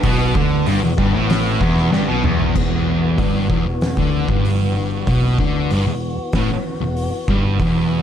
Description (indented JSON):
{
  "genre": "stoner and doom metal",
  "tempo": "95 BPM",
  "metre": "4/4",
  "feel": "straight",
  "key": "E minor",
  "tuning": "A4 = 440 Hz",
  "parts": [
    { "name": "tonewheel organ", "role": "sustained chords", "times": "0.0-8.0 s", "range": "E3 to F#4", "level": "-28 LUFS", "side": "left 2 dB", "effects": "slow rotary speaker" },
    { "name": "distorted electric guitar", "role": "riff", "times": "0.0-2.5 s", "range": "E2 to D3", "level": "-23 LUFS", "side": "equal", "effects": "overdrive" },
    { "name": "thick fuzz guitar", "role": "riff", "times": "0.0-8.0 s", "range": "E2 to D3", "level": "-21 LUFS", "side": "left 7 dB", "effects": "distortion" },
    { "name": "thick fuzz guitar", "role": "riff", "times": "0.0-8.0 s", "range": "E2 to D3", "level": "-22 LUFS", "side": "right 10 dB", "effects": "distortion" },
    { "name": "picked electric bass", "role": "bass", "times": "0.0-8.0 s", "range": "E1 to D2", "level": "-22 LUFS", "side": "equal", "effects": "overdrive" },
    { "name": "oversized low-tuned drum kit", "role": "drums", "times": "0.0-7.7 s", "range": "crash cymbal, hi-hat, kick drum, snare drum, toms", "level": "-22 LUFS", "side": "equal", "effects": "none" }
  ],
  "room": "light reverb",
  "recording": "dark, warm production, lossy compression artefacts",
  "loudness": "-16 LUFS",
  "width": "side -9 dB against mid",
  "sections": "0.0-2.6 A section; 2.6-8.0 B section",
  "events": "drum fill 1.9-2.6",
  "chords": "0.0 Em"
}